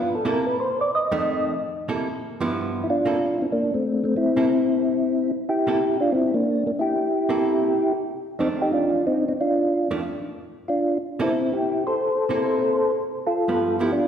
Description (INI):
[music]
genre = jazz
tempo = 184 BPM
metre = 4/4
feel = swing 64% on 8ths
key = C mixolydian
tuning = A4 = 437 Hz
[part]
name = percussive tonewheel organ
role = melody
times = 0.0-14.1 s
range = A3 to Eb5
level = -21 LUFS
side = equal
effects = chorus vibrato, slow rotary speaker
[part]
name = archtop guitar, miked and amplified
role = accompaniment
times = 0.3-13.9 s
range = F2 to A4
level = -28 LUFS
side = right 2 dB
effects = none
[sound]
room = wet concert hall reverb, RT60 1.8 s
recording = recorded in a church or concert hall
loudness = -20 LUFS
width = side -8 dB against mid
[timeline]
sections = 0.0-2.9 A section; 2.9-14.1 B section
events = tonewheel organ solo 0.0-2.9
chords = 0.2 C6; 0.9 F7; 1.6 C6; 2.2 G6; 2.9 C13; 8.1 F6; 10.7 C13; 13.3 G13